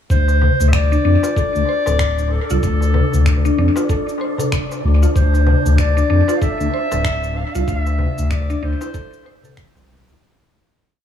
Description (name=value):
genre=organic downtempo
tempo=95 BPM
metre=4/4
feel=swing 59% on 16ths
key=D minor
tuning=A4 = 440 Hz
part: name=warm clarinet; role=melody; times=0.1-9.9 s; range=A4 to F5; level=-23 LUFS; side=left 1 dB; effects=dub echo
part: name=smooth synth bass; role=bass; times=0.1-10.2 s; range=D1 to F2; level=-15 LUFS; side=left 1 dB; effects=sidechain pumping
part: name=electronic cabasa and finger snaps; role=drums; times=0.1-10.2 s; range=none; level=-30 LUFS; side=equal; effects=studio ambience, analog delay
part: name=electronic kick drum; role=drums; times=0.1-9.7 s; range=none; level=-20 LUFS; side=equal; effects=studio ambience
part: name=wind-like tuned noise texture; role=texture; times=1.1-10.2 s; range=D4 to D5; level=-28 LUFS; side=equal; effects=built-in reverb
part: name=darbuka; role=percussion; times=0.3-10.2 s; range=none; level=-28 LUFS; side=left 5 dB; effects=analog delay
part: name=mallet-like synth pluck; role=arpeggios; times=0.9-10.2 s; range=D4 to C5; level=-23 LUFS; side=left 1 dB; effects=chorus, dub echo
room=digital ambience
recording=echo-heavy mix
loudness=-14 LUFS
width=side -9 dB against mid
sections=0.1-10.2 groove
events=fade-out 6.8-10.2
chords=0.1 D5; 7.7 Am/D